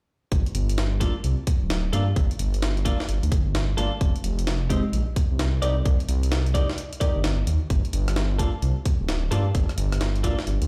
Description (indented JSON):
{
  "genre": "UK garage, two-step garage",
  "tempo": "130 BPM",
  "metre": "4/4",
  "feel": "swing 64% on 16ths",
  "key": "G minor",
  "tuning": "A4 = 440 Hz",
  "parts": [
    { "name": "dark detuned saw bass", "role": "bass", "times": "0.3-10.7 s", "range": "D1 to G2", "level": "-26 LUFS", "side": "equal", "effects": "sidechain pumping" },
    { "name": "breakbeat sampler-style drum kit", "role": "drums", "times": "0.3-10.7 s", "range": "hi-hat, rim click, snare drum", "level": "-34 LUFS", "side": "equal", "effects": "studio reverb" },
    { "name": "electronic kick drum", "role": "drums", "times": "0.3-10.4 s", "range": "none", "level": "-25 LUFS", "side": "equal", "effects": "overdrive, studio reverb" },
    { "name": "twelve-string electric guitar", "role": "stabs", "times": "1.0-10.4 s", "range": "Ab3 to D5", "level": "-32 LUFS", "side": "equal", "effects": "vintage 12-bit sampler grit, tape echo" }
  ],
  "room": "little or no reverb",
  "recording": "played on a big sound system in a bare room, large studio reverb",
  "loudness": "-24 LUFS",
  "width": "mono",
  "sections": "0.3-10.7 A section",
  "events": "none",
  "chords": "0.3 Gm9; 4.0 Fm7; 5.6 Cm9; 7.7 Gm9",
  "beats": "| 0.32 0.78 1.24 1.70 | 2.16 2.62 3.09 3.55 | 4.01 4.47 4.93 5.39 | 5.86 6.32 6.78 7.24 | 7.70 8.16 8.62 9.09 | 9.55 10.01 10.47"
}